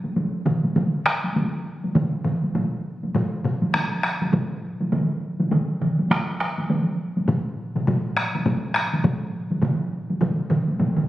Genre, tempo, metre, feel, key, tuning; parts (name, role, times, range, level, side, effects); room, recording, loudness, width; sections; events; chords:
japanese traditional, taiko drum ensemble; 102 BPM; 4/4; swing 60% on 16ths
taiko ensemble; percussion; 0.0-11.0 s; -24 LUFS; equal
taiko ensemble; percussion; 0.5-11.1 s; -26 LUFS; left 1 dB
taiko ensemble; percussion; 0.5-11.1 s; -25 LUFS; right 2 dB
wet recital hall reverb, RT60 1.6 s; recorded on a phone in the room, studio reverb, compression; -21 LUFS; side -15 dB against mid
0.0-11.1 A section
speeding up 0.0-11.1